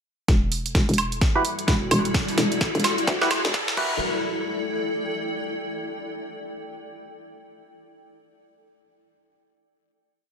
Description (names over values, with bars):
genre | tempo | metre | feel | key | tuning
bass house | 129 BPM | 4/4 | swing 60% on 16ths | E minor | A4 = 440 Hz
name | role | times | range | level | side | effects
deep dark ambient pad | sustained chords | 1.4-4.0 s | G3 to F#4 | -32 LUFS | left 3 dB | chorus, built-in reverb, sidechain pumping
hollow knocking FM bass | bass | 0.3-4.0 s | E1 to D2 | -25 LUFS | equal | sidechain pumping
electronic kick drum | drums | 0.3-3.9 s | none | -22 LUFS | equal | none
house drum kit | drums | 0.3-3.9 s | crash cymbal, hi-hat, snare drum, woodblock | -26 LUFS | right 1 dB | high-pass filter on snare, high-pass filter on hats, high-pass filter on perc, high-pass filter on cymbals, high-pass filter on room
riser | sound effects | 1.3-4.0 s | none | -32 LUFS | equal | none
granular cloud pad | texture | 1.1-5.8 s | E4 to G5 | -31 LUFS | equal | built-in reverb, sidechain pumping
percussive organ stab | stabs | 1.4-4.0 s | E4 to B4 | -27 LUFS | right 2 dB | wide subtle chorus, cassette tape, sidechain pumping, dub echo
room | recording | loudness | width
light reverb | high-pass filter | -21 LUFS | side -7 dB against mid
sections
0.3-4.0 build; 4.0-5.9 final chord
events
build-up 0.3-4.0; drum fill 0.3-4.0; filter sweep on ambient pad 0.3-4.0; filter sweep 0.3-4.0; riser 1.3-4.0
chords
0.3 Emadd9; 4.0 Em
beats
| 0.28 0.75 1.22 1.68 | 2.15 2.61 3.08 3.54 | 4.01 4.47 4.94 5.40